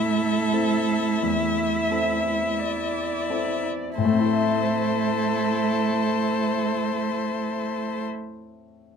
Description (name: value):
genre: classical, slow romantic movement for piano quintet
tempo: 40-50 BPM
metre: 4/4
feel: rubato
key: A minor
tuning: A4 = 439 Hz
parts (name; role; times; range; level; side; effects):
- clear violin; melody; 0.0-8.1 s; C5 to E5; -29 LUFS; left 8 dB; none
- warm cello; second line; 0.0-8.0 s; A3; -26 LUFS; right 7 dB; none
- warm violin; second line; 0.0-8.0 s; E4 to A4; -30 LUFS; left 3 dB; none
- clear concert grand piano; accompaniment; 0.0-9.0 s; E2 to E5; -28 LUFS; left 5 dB; none
- rich viola; accompaniment; 0.0-8.1 s; E4 to E5; -31 LUFS; right 5 dB; none
room: light reverb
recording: none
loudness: -22 LUFS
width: side -6 dB against mid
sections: 0.0-4.0 A section; 4.0-8.9 B section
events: slowing down 0.0-4.0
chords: 0.0 Am